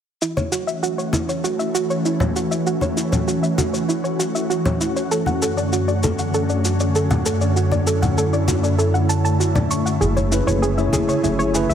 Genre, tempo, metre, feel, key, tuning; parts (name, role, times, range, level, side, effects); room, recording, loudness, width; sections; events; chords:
sunset chillout; 98 BPM; 4/4; straight; F# minor; A4 = 440 Hz
ethereal airy pad; sustained chords; 0.2-11.7 s; F#2 to G#4; -21 LUFS; equal; ensemble chorus, built-in reverb
soft round pluck; arpeggios; 0.2-11.7 s; E4 to C#6; -23 LUFS; right 2 dB; chorus, ping-pong delay
cabasa; drums; 0.2-11.7 s; -29 LUFS; left 2 dB
congas; percussion; 0.4-11.1 s; -23 LUFS; left 2 dB
upright bass; bass; 10.0-11.7 s; F#1 to C#2; -22 LUFS; equal
tine electric piano; accompaniment; 10.3-11.7 s; A3 to C#5; -22 LUFS; left 1 dB; medium stereo tremolo, auto-pan, ping-pong delay
moderate lush hall reverb, RT60 2.1 s; heavily compressed radio sound; -17 LUFS; side -9 dB against mid
0.2-11.7 A section
filter sweep on ambient pad 0.2-11.7; filter sweep on synth arpeggio sound 0.2-11.7
0.2 F#m7; 5.1 Dmaj7/F#; 10.0 B7sus2/F#